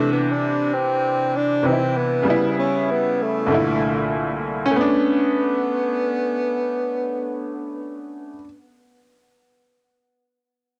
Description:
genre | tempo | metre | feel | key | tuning
hip hop, jazz-hop | 97 BPM | 4/4 | swing 63% on 16ths | unclear | A4 = 439 Hz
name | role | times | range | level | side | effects
breathy tenor saxophone | melody | 0.0-8.0 s | A3 to D4 | -25 LUFS | equal | plate reverb, analog delay
bright upright piano | accompaniment | 0.0-8.5 s | C2 to B4 | -24 LUFS | equal | cassette tape, plate reverb
room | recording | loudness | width
wet booth ambience, RT60 0.2 s | home recording on cassette | -21 LUFS | mono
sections
0.0-4.7 A section; 4.7-7.2 B section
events
none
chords
0.0 Cmaj9; 2.3 C#m7b5; 3.5 C13; 4.7 Bm9

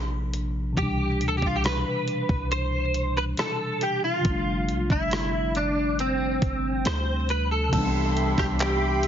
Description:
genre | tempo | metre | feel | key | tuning
contemporary R&B | 69 BPM | 4/4 | straight | C major | A4 = 440 Hz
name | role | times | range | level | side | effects
mellow tine electric piano | accompaniment | 0.0-9.1 s | B2 to D4 | -30 LUFS | left 2 dB | none
warm 808-style bass | bass | 0.0-9.1 s | G1 to D2 | -28 LUFS | equal | none
crisp 8-bit digital drum machine | drums | 0.3-9.1 s | handclaps, hi-hat, kick drum, rim click | -29 LUFS | equal | none
direct-recorded clean electric guitar | melody | 0.8-9.1 s | C4 to C5 | -26 LUFS | right 1 dB | ensemble chorus, ping-pong delay
lush unison pad | sustained chords | 7.7-9.1 s | G4 to C6 | -29 LUFS | equal | chorus
downlifter | sound effects | 7.7-9.1 s | none | -35 LUFS | left 2 dB | none
celesta | texture | 7.7-8.6 s | A5 | -35 LUFS | right 2 dB | ping-pong delay
room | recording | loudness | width
digital ambience | heavily compressed radio sound, multiband compression, nothing above 7.5 kHz | -23 LUFS | side -9 dB against mid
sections
0.0-7.7 A section; 7.7-9.1 B section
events
none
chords
0.0 Bb; 0.8 Cmaj7; 4.2 G7sus4; 7.7 Cmaj7

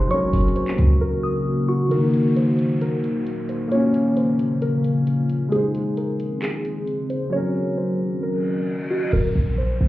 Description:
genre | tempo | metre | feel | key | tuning
hip hop, trap | 133 BPM | 4/4 | half-time | Eb dorian | A4 = 439 Hz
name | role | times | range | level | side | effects
muted felt-like synth keys | melody | 0.0-9.9 s | Gb4 to Db5 | -27 LUFS | equal | chorus, low-pass filter
delicate synth tine bell | second line | 0.0-1.9 s | Db6 to Eb6 | -31 LUFS | equal | chorus, phaser, tape echo
dark grand piano | accompaniment | 0.0-9.2 s | Eb3 to C5 | -23 LUFS | left 1 dB | low-pass filter
deep dark ambient pad | sustained chords | 0.0-9.1 s | Db3 to Bb4 | -25 LUFS | equal | chorus, built-in reverb
short 808-style bass | bass | 0.0-1.0, 9.1-9.9 s | Eb1 to Db2 | -19 LUFS | equal | none
trap drum kit | drums | 0.1-9.2 s | crash cymbal, handclaps, hi-hat | -34 LUFS | equal | none
downlifter and reverse cymbal | sound effects | 1.9-9.9 s | none | -39 LUFS | left 1 dB | none
room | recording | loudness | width
light reverb | heard muffled through a wall, club reverb, EQ | -19 LUFS | side -16 dB against mid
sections
0.0-1.9 A section; 1.9-9.1 B section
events
break 1.0-1.9; reverse cymbal 8.4-9.1; hi-hats muted 9.1-9.9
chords
0.1 Gb; 1.9 Ebm; 3.7 Bbm; 5.5 Ab; 7.3 Gb; 9.1 Eb5

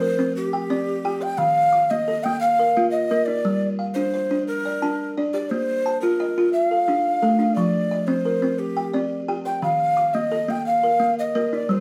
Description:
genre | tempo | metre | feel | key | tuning
southern african traditional | 116 BPM (dotted quarters) | 12/8 | straight | unclear | A4 = 442 Hz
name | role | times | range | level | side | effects
breathy mellow Native American-style cedar flute | melody | 0.0-11.8 s | G4 to G5 | -24 LUFS | equal | none
buzzing kalimba | arpeggios | 0.0-11.8 s | Eb3 to D6 | -26 LUFS | equal | none
room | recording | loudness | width
wet studio reverb, RT60 0.5 s | heard from further back in the room | -22 LUFS | mono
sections
0.0-11.8 A section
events
none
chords
0.4 C5; 1.4 Eb5; 3.5 Gm; 5.5 Bb; 6.5 Dm; 7.6 F; 8.6 C5; 9.6 Eb5

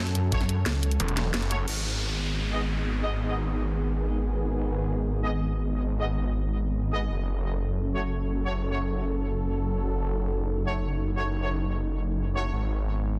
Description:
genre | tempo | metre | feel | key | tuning
dark technical drum and bass | 177 BPM | 4/4 | straight | G# phrygian | A4 = 440 Hz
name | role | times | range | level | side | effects
sweeping resonant pad | sustained chords | 0.0-13.2 s | D#3 to A4 | -36 LUFS | equal | chorus, sidechain pumping
pulsing pluck wobble bass | bass | 0.0-1.0 s | C#2 to F#2 | -28 LUFS | equal | chorus
drum and bass drum kit | drums | 0.1-1.7 s | crash cymbal, hi-hat, snare drum | -34 LUFS | equal | overdrive
warm brass ensemble | stabs | 0.3-12.4 s | A3 to D#5 | -38 LUFS | equal | low-pass filter, dub echo
snarling distorted saw bass | bass | 1.0-13.2 s | E1 to G#1 | -30 LUFS | equal | distortion, tube saturation, sidechain pumping
downlifter | sound effects | 1.7-4.4 s | none | -38 LUFS | equal | none
room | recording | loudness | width
light reverb, digital ambience | dense, heavily limited modern master | -28 LUFS | mono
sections
0.0-1.7 A section; 1.7-13.2 B section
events
drop 0.0-1.7; band accent 1.3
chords
0.0 F#m; 1.7 G#m; 7.1 F#m; 12.5 G#m

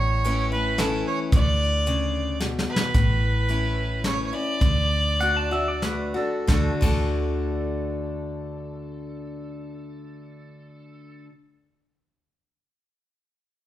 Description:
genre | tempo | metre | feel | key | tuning
honky-tonk and classic country | 89-111 BPM | 3/4 | straight | D major | A4 = 439 Hz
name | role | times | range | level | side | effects
clear fiddle | melody | 0.0-5.8 s | A4 to D5 | -26 LUFS | right 2 dB | none
picked steel-string acoustic guitar | accompaniment | 0.0-11.3 s | A2 to F#4 | -30 LUFS | left 3 dB | none
vintage muted fingered electric bass | bass | 0.0-11.3 s | A1 to D2 | -26 LUFS | equal | none
soft brush drum kit | drums | 0.2-7.0 s | crash cymbal, hi-hat, kick drum, snare drum | -23 LUFS | equal | none
pedal steel guitar | second line | 5.2-11.3 s | A4 to A5 | -30 LUFS | equal | none
room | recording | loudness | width
light reverb | band playing live in one room | -21 LUFS | side -13 dB against mid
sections
0.0-2.9 A section; 2.9-6.5 B section; 6.5-10.5 C section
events
drum fill 2.4-2.9; slowing down 2.9-6.5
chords
0.0 A; 1.3 Bmadd9/D; 2.9 A; 4.6 D

